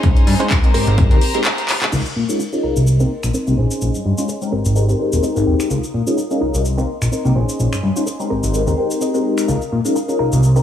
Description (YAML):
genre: filtered disco house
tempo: 127 BPM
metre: 4/4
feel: swing 55% on 16ths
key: unclear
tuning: A4 = 440 Hz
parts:
  - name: rich chamber violin section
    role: sustained chords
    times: 0.0-10.6 s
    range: Db4 to Eb6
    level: -28 LUFS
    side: left 2 dB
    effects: sidechain pumping, low-pass filter
  - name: direct-recorded clean electric guitar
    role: riff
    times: 0.0-10.6 s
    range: C4 to G5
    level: -25 LUFS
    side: right 2 dB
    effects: vintage 12-bit sampler grit, sidechain pumping, low-pass filter
  - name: fat analog bass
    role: bass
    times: 0.0-10.6 s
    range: Eb1 to Bb2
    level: -16 LUFS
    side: equal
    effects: tube saturation, sidechain pumping, low-pass filter
  - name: electronic kick drum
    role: drums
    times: 0.0-1.1 s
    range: none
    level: -13 LUFS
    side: equal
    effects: overdrive, studio reverb
  - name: house drum kit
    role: drums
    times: 0.0-10.6 s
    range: crash cymbal, finger snaps, handclaps, hi-hat, shaker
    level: -25 LUFS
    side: left 1 dB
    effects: overdrive, sidechain pumping on hats, studio reverb, sidechain pumping on cymbals, sidechain pumping on perc
  - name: funky polysynth comp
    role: accompaniment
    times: 0.4-10.6 s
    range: Ab3 to C5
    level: -20 LUFS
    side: left 2 dB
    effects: chorus, phaser, sidechain pumping, low-pass filter
room: light reverb, digital ambience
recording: none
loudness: -15 LUFS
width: side -10 dB against mid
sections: 0.0-1.9 A section; 1.9-10.6 B section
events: filter sweep 0.0-1.9, 1.9-10.6; break 1.5-1.9; drum fill 1.7; clean electric guitar fill 5.0-5.7, 8.5-9.5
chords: 0.0 Bbm11; 0.7 Abmaj9; 1.9 Db69; 2.9 Cm7; 3.6 Bbm11; 4.5 Abmaj9; 5.7 Db69; 6.6 Cm7; 7.4 Bbm11; 8.3 Abmaj9; 9.5 Db69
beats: | 0.04 0.51 0.98 1.45 | 1.93 2.40 2.87 3.34 | 3.81 4.29 4.76 5.23 | 5.70 6.18 6.65 7.12 | 7.59 8.07 8.54 9.01 | 9.48 9.96 10.43